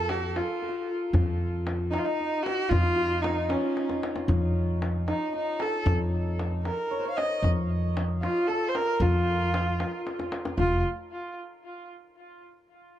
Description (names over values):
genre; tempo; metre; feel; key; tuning
Persian modal ensemble; 76 BPM (dotted quarters); 6/8; straight; F dastgah homayun; A4 = 439 Hz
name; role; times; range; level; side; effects
clear kamancheh; melody; 0.0-10.8 s; Db4 to F5; -30 LUFS; right 1 dB; plate reverb, tape echo
santur; second line; 0.0-11.4 s; Db4 to Eb5; -32 LUFS; left 2 dB; none
upright bass; bass; 0.0-10.8 s; F1 to F2; -28 LUFS; equal; none
tombak; percussion; 0.1-10.8 s; none; -29 LUFS; left 1 dB; none
room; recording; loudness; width
light reverb; dark, warm production; -25 LUFS; side -12 dB against mid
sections
0.0-10.6 A section; 10.6-12.2 B section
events
drum fill 3.8-4.3, 10.1-10.6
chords
none